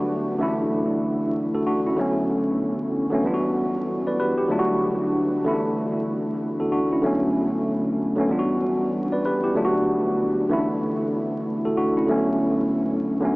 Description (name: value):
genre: hip hop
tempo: 95 BPM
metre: 4/4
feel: swing 62% on 16ths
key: unclear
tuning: A4 = 440 Hz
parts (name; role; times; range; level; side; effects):
- tine electric piano; solo; 0.0-13.4 s; D3 to D5; -20 LUFS; equal; overdrive, fast stereo tremolo, cassette tape, high-pass filter, low-pass filter, analog delay
room: wet huge ambient reverb, RT60 8.3 s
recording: dreamy mix soaked in reverb, vinyl crackle, small speaker sound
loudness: -20 LUFS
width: side -23 dB against mid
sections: 0.0-13.4 A section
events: none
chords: 0.4 Asus4; 2.0 Bm7; 3.2 Em7; 4.5 D; 5.5 Asus4; 7.0 Bm7; 8.3 Em7; 9.6 D; 10.5 Asus4; 12.1 Bm7